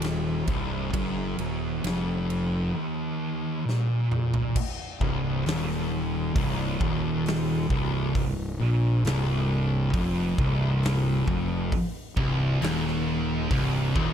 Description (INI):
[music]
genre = stoner and doom metal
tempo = 67 BPM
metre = 4/4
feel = straight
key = C minor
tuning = A4 = 444 Hz
[part]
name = thick fuzz guitar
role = riff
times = 0.0-14.1 s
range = C2 to Bb2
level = -28 LUFS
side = left 7 dB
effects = distortion
[part]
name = thick fuzz guitar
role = riff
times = 0.0-14.1 s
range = C2 to Bb2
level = -28 LUFS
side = right 7 dB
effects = distortion
[part]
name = fuzz fingered electric bass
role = bass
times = 0.0-14.1 s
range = C1 to Bb1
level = -31 LUFS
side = equal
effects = overdrive, tube saturation
[part]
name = big rock drum kit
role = drums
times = 0.0-14.1 s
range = crash cymbal, hi-hat, kick drum, ride cymbal, snare drum, toms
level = -31 LUFS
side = equal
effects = none
[part]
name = high-gain distorted guitar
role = riff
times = 12.2-14.1 s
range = C2 to Eb2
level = -32 LUFS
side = right 1 dB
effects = distortion
[sound]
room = small room ambience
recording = dark, warm production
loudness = -24 LUFS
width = side -9 dB against mid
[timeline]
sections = 0.0-4.6 A section; 4.6-14.1 B section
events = drum fill 3.7-4.6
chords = 0.0 Cm